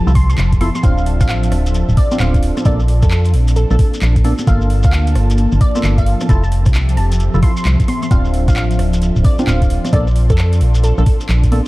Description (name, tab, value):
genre	UK garage, two-step garage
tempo	132 BPM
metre	4/4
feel	swing 64% on 16ths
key	D minor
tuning	A4 = 440 Hz
part	soft string machine	sustained chords	0.0-11.7 s	Bb3 to E5	-29 LUFS	right 1 dB	phaser, ensemble chorus, sidechain pumping
part	ethereal airy pad	texture	0.0-11.7 s	F3 to C6	-25 LUFS	equal	ensemble chorus, built-in reverb, tremolo, sidechain pumping
part	percussive organ stab	stabs	0.1-11.6 s	Bb3 to A4	-24 LUFS	right 1 dB	analog chorus, tape echo
part	organ-like FM bass	bass	0.1-11.6 s	D1 to F2	-14 LUFS	equal	none
part	shekere	percussion	0.1-11.7 s	none	-34 LUFS	left 1 dB	none
part	glassy wavetable pluck	melody	0.2-11.0 s	A4 to C6	-25 LUFS	equal	chorus, cassette tape, tape echo
part	electronic kick drum	drums	0.2-11.5 s	none	-14 LUFS	equal	overdrive, studio reverb
part	garage drum kit	drums	0.2-11.6 s	congas, handclaps, hi-hat, rim click	-25 LUFS	left 1 dB	overdrive, studio reverb
room	digital ambience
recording	dark, warm production, vinyl crackle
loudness	-12 LUFS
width	side -19 dB against mid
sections	0.0-11.7 A section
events	none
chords	0.0 Fmaj7; 0.8 Dm7; 2.7 Bbmaj7; 4.5 Gm9; 6.3 Fmaj7; 8.1 Dm7; 9.9 Bbmaj7